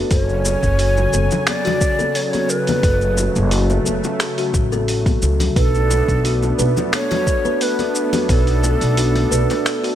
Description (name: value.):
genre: organic downtempo.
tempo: 88 BPM.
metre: 4/4.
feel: straight.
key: F# minor.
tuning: A4 = 440 Hz.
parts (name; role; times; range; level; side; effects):
warm analog pad; sustained chords; 0.0-9.9 s; C#3 to G#5; -24 LUFS; right 2 dB; chorus, sidechain pumping.
kalimba; arpeggios; 0.0-9.9 s; F#4 to B4; -23 LUFS; left 2 dB; ping-pong delay.
breathy ney; melody; 0.1-9.9 s; A4 to D5; -23 LUFS; right 1 dB; ping-pong delay.
upright bass; bass; 0.1-9.4 s; F#1 to C#2; -18 LUFS; equal; none.
dusty soul sampler-style drum kit; drums; 0.1-9.9 s; finger snaps, hi-hat, shaker; -24 LUFS; equal; none.
electronic kick drum; drums; 0.1-8.4 s; none; -19 LUFS; equal; none.
bongos and congas; percussion; 0.5-9.6 s; none; -27 LUFS; left 4 dB; none.
room: light reverb, small room ambience.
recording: none.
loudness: -15 LUFS.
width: side -11 dB against mid.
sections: 0.0-9.9 A section.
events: none.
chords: 0.1 F#madd9; 5.6 Bm7.